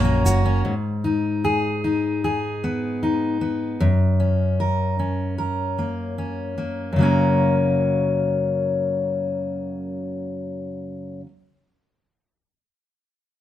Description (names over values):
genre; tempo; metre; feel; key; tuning
pop; 76 BPM; 4/4; straight; F# major; A4 = 442 Hz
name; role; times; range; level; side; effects
fingerpicked steel-string acoustic guitar; accompaniment; 0.0-11.3 s; F#2 to A#4; -20 LUFS; left 1 dB; none
pedal harmonium; sustained chords; 0.0-0.6 s; F#4 to A#5; -28 LUFS; right 4 dB; none
vintage muted fingered electric bass; bass; 0.0-0.6 s; F#1 to A#1; -21 LUFS; right 2 dB; none
room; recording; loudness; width
light reverb; band playing live in one room; -20 LUFS; side -12 dB against mid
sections
0.6-7.0 A section; 7.0-10.1 B section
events
none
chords
0.0 F#; 0.6 G#m; 3.8 F#